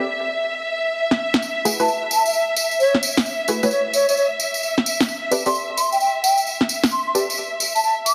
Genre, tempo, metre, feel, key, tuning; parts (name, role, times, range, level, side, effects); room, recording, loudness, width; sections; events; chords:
UK garage, two-step garage; 131 BPM; 4/4; swing 64% on 16ths; A4 = 443 Hz
warm symphonic violin section; sustained chords; 0.0-8.1 s; E5; -26 LUFS; equal
punchy chord stab; stabs; 0.0-7.3 s; A3 to D5; -26 LUFS; equal; chorus, phaser, delay
electronic snare drum; drums; 1.1-6.9 s; -22 LUFS; equal; small room ambience
tambourine; percussion; 1.4-8.1 s; -27 LUFS; equal
baroque flute; melody; 1.8-8.1 s; C#5 to D6; -22 LUFS; equal; delay
moderate plate reverb, RT60 1.6 s, small room ambience; heavily compressed radio sound; -20 LUFS; mono
0.0-8.1 A section